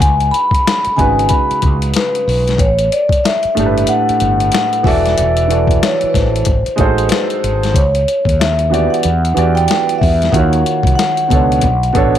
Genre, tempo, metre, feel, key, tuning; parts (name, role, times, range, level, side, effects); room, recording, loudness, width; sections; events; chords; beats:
R&B, neo-soul; 93 BPM; 4/4; swing 62% on 16ths; C# phrygian; A4 = 440 Hz
vibraphone with soft mallets; melody; 0.0-12.2 s; B4 to B5; -16 LUFS; left 1 dB
warm baby grand piano; accompaniment; 0.0-12.2 s; A2 to D5; -18 LUFS; right 4 dB
mellow fretless electric bass; bass; 0.0-12.1 s; E1 to E2; -16 LUFS; equal; transformer saturation
boom bap sampler-style drum kit; drums; 0.0-12.2 s; hi-hat, kick drum, snare drum; -17 LUFS; left 2 dB
light reverb, digital ambience; 1960s-style stereo; -11 LUFS; side -10 dB against mid
0.0-7.7 A section; 7.7-12.2 B section
0.0 C#9sus4; 2.6 A9sus4; 4.8 E9sus4; 6.5 G#7b9; 7.7 C#m9; 9.0 Em9; 10.3 D#m9; 11.6 Bm9
| 0.00 0.65 1.29 1.94 | 2.58 3.23 3.87 4.52 | 5.16 5.81 6.46 7.10 | 7.75 8.39 9.04 9.68 | 10.33 10.97 11.62